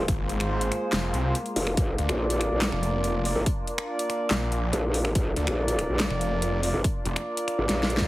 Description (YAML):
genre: heavy wobble dubstep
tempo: 142 BPM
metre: 4/4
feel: half-time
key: unclear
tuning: A4 = 439 Hz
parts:
  - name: dark chamber string section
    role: sustained chords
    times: 0.0-8.1 s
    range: Ab3 to F4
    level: -35 LUFS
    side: left 2 dB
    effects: sidechain pumping, low-pass filter
  - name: mellow brass ensemble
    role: stabs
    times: 0.0-8.1 s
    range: F4 to D5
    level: -31 LUFS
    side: right 1 dB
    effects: vintage 12-bit sampler grit, digital delay
  - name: growl bass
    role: bass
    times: 0.0-8.1 s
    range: F1 to Bb1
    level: -26 LUFS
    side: equal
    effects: chorus, overdrive
  - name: snarling distorted saw bass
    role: bass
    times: 0.1-7.1 s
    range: F1 to D2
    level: -27 LUFS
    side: equal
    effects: distortion, overdrive
  - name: dubstep drum kit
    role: drums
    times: 0.1-8.1 s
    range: finger snaps, handclaps, hi-hat, snare drum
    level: -30 LUFS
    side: equal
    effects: none
  - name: electronic kick drum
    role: drums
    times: 0.1-8.1 s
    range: none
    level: -27 LUFS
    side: equal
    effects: none
room: little or no reverb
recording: heavily compressed radio sound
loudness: -24 LUFS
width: side -17 dB against mid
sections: 0.0-8.1 A section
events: drum fill 7.7-8.1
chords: 0.0 Fm; 1.8 Bb